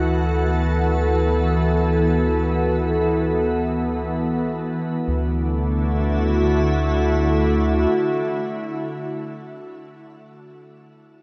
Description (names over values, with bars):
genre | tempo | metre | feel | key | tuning
ambient | free time | none | none | D major | A4 = 436 Hz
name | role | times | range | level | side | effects
soft additive organ-like pad | sustained chords | 0.0-9.6 s | D3 to A4 | -23 LUFS | equal | ensemble chorus, built-in reverb, shimmer reverb
round analog bass | bass | 0.0-7.9 s | D2 | -25 LUFS | equal | none
room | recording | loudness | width
wet plate reverb, RT60 3.3 s | dreamy mix soaked in reverb | -21 LUFS | mono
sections
0.0-5.1 A section; 5.1-8.9 B section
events
filter sweep on ambient pad 0.0-5.1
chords
0.0 E9sus4/D; 5.1 D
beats
free time